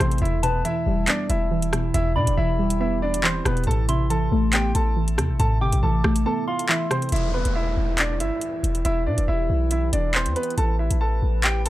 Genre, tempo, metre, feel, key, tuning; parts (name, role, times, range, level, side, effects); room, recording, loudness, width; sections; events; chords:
hip hop, drill; 139 BPM; 4/4; half-time; E minor; A4 = 441 Hz
clear concert grand piano; melody; 0.0-11.7 s; B3 to A5; -27 LUFS; right 1 dB; low-pass filter
soft synth bell; second line; 0.0-7.1 s; A5 to D6; -33 LUFS; left 1 dB; chorus, phaser, analog delay
soft round pluck; accompaniment; 0.0-7.1 s; E2 to B3; -25 LUFS; equal; chorus, low-pass filter
deep dark ambient pad; sustained chords; 0.0-11.7 s; E3 to E5; -34 LUFS; equal; chorus, built-in reverb
hard-hitting 808-style bass; bass; 0.0-11.7 s; E1 to B2; -23 LUFS; equal
drill drum kit; drums; 0.0-11.7 s; handclaps, hi-hat, rim click; -24 LUFS; equal
downlifter; sound effects; 7.1-10.6 s; -35 LUFS; left 1 dB
digital ambience; dry, gritty hardware recording; -20 LUFS; side -15 dB against mid
0.0-7.1 A section; 7.1-11.7 B section
break 6.3-7.1
0.2 Em; 3.7 Amadd9; 7.1 Em; 10.6 Amadd9